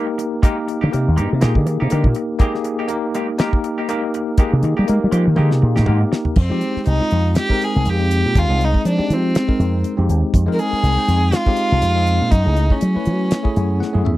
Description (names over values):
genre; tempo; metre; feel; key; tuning
electric jazz fusion; 121 BPM; 4/4; swing 56% on 16ths; F minor; A4 = 441 Hz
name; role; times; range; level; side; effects
barky tine electric piano; accompaniment; 0.0-14.2 s; Ab3 to Ab5; -22 LUFS; left 1 dB; medium stereo tremolo
semi-hollow electric guitar; stabs; 0.0-6.2 s; Ab3 to G4; -28 LUFS; right 1 dB; wide subtle chorus
damped 70s drum kit; drums; 0.2-14.2 s; crash cymbal, hi-hat, kick drum, snare drum, toms; -18 LUFS; equal; none
slap bass with an envelope filter; bass; 0.8-14.2 s; C2 to Ab3; -16 LUFS; equal; none
warm violin; melody; 6.4-14.1 s; C4 to Bb4; -21 LUFS; equal; slapback echo
room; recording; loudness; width
little or no reverb; dry, close 1970s-style studio recording; -15 LUFS; side -16 dB against mid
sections
0.0-6.4 A section; 6.4-14.2 B section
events
slap bass solo 0.0-6.4; drum fill 5.4-6.4, 13.8-14.2; tine electric piano fill 13.3-14.2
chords
0.0 Fm11 (rootless); 6.4 Fm9; 12.3 Gbm9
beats
| 0.43 0.92 1.42 1.91 | 2.41 2.90 3.40 3.89 | 4.39 4.88 5.38 5.87 | 6.37 6.87 7.36 7.86 | 8.35 8.85 9.35 9.84 | 10.34 10.83 11.33 11.83 | 12.32 12.82 13.31 13.81